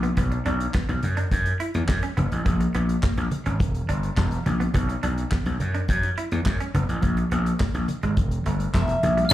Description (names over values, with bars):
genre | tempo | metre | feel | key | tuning
early-eighties boogie funk | 105 BPM | 4/4 | straight | unclear | A4 = 440 Hz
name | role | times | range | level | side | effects
semi-hollow electric guitar | riff | 0.0-9.3 s | G3 to E4 | -33 LUFS | right 4 dB | lush chorus, slapback echo
gritty slap bass | bass | 0.0-9.2 s | E1 to F#2 | -23 LUFS | equal | overdrive
damped 70s drum kit | drums | 0.0-9.3 s | handclaps, hi-hat, kick drum, snare drum | -26 LUFS | equal | none
congas | percussion | 0.2-9.3 s | none | -32 LUFS | equal | none
mandolin | melody | 8.7-9.3 s | E5 to E#5 | -23 LUFS | equal | slapback echo
room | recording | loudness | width
studio reverb | live gig heard through the venue's PA, club reverb | -22 LUFS | side -14 dB against mid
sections
0.0-9.3 A section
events
none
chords
0.2 Bm; 1.0 F#7(no3); 2.5 A#7(no3); 3.6 Em7; 4.7 Bm; 5.6 F#7(no3); 7.0 G#sus2; 8.2 Em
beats
| 0.17 0.74 1.32 1.89 | 2.46 3.03 3.60 4.17 | 4.74 5.32 5.89 6.46 | 7.03 7.60 8.17 8.74 | 9.32